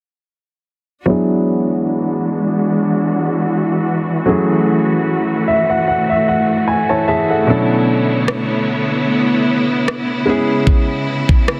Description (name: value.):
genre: contemporary R&B.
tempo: 75 BPM.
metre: 4/4.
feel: swing 54% on 16ths.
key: unclear.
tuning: A4 = 437 Hz.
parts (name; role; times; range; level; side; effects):
warm baby grand piano; accompaniment; 1.1-11.6 s; B2 to A5; -19 LUFS; equal; low-pass filter.
bright studio string section; sustained chords; 1.1-11.6 s; C#3 to C#5; -20 LUFS; equal; sidechain pumping, low-pass filter.
trap drum kit; drums; 8.3-11.6 s; kick drum, rim click; -17 LUFS; equal; soft clipping on snare.
room: light reverb, small room ambience.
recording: dense, heavily limited modern master.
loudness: -16 LUFS.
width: mono.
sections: 1.1-11.6 A section.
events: filter sweep 1.1-11.6; grand piano fill 5.1-7.5.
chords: 1.1 E9; 4.3 F#m7; 7.5 Bm11; 10.3 C#m7.